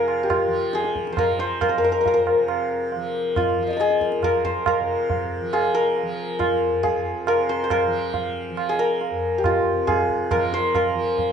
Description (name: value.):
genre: indian classical, Hindustani.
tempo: 138 BPM.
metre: 7/4.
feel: straight.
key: F raga bhimpalasi.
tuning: A4 = 440 Hz.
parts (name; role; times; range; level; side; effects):
santur; melody; 0.0-11.3 s; F4 to F5; -21 LUFS; left 2 dB; none.
tanpura; drone; 0.0-11.3 s; F2 to F3; -33 LUFS; equal; none.
tabla; percussion; 0.1-11.3 s; none; -26 LUFS; right 7 dB; none.
room: wet large studio reverb, RT60 0.8 s.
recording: band playing live in one room, nothing above 10.8 kHz.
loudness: -20 LUFS.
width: side -7 dB against mid.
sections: 0.0-11.3 A section.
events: none.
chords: none.